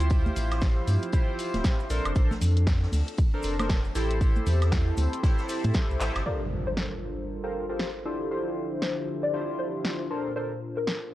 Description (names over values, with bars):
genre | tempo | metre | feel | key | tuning
deep house | 117 BPM | 4/4 | swing 60% on 16ths | G dorian | A4 = 441 Hz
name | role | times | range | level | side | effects
hollow soft pad | sustained chords | 0.0-11.1 s | Bb2 to E5 | -38 LUFS | equal | chorus, sidechain pumping
chorused polysynth | stabs | 0.0-10.5 s | D4 to C5 | -32 LUFS | left 1 dB | sidechain pumping, analog delay
round analog bass | bass | 0.0-6.2 s | D1 to A2 | -26 LUFS | equal | sidechain pumping
house drum kit | drums | 0.0-11.0 s | handclaps, hi-hat, snare drum, woodblock | -33 LUFS | equal | none
maracas | percussion | 0.0-6.2 s | none | -48 LUFS | left 2 dB | none
electronic kick drum | drums | 0.1-5.9 s | none | -24 LUFS | equal | none
swinging big-band drum kit | drums | 0.1-6.3 s | hi-hat, snare drum, tambourine | -46 LUFS | left 1 dB | sidechain pumping on hats, high-pass filter on hats, high-pass filter on snare, sidechain pumping on perc, high-pass filter on perc, high-pass filter on room
congas | percussion | 0.3-5.7 s | none | -35 LUFS | right 2 dB | sidechain pumping on perc
soft round pluck | melody | 6.3-10.9 s | A4 to D5 | -33 LUFS | left 2 dB | ensemble chorus, cassette tape, analog delay
impact | sound effects | 6.3-8.3 s | none | -35 LUFS | equal | none
room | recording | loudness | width
little or no reverb | cassette tape | -24 LUFS | side -15 dB against mid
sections
0.0-6.3 A section; 6.3-11.1 B section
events
drum fill 6.0; band accent 6.0; impact 6.3-8.3; filter sweep on analog polysynth 6.3-11.1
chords
0.0 Dm11; 1.9 Bbmaj9; 4.0 Am7; 6.3 Gm11; 8.1 Dm11; 10.1 Bbmaj9